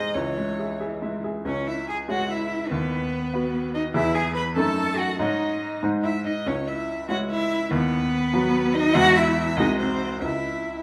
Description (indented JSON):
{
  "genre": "quick classical-period movement for piano trio",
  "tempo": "96 BPM (dotted quarters)",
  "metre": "6/8",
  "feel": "straight",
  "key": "C# minor",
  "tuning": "A4 = 440 Hz",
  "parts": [
    { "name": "warm violin", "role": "melody", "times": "0.0-10.8 s", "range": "B4 to B5", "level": "-32 LUFS", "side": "equal", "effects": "none" },
    { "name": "rich cello", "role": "second line", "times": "0.0-10.8 s", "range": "E3 to B4", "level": "-28 LUFS", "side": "equal", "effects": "none" },
    { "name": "bright grand piano", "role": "accompaniment", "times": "0.0-10.8 s", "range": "B#1 to E5", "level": "-28 LUFS", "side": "equal", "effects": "none" }
  ],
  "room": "wet recital hall reverb, RT60 1.4 s",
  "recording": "none",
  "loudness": "-24 LUFS",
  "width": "mono",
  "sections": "0.0-1.5 A section; 1.5-10.8 B section",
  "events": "none",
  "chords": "0.1 C#m; 2.7 B/D#; 3.9 E; 4.6 D#dim/F#; 5.2 G#sus4; 5.8 G#; 6.5 C#m; 7.7 B/D#; 9.0 E; 9.6 G#7/B#; 10.2 C#m"
}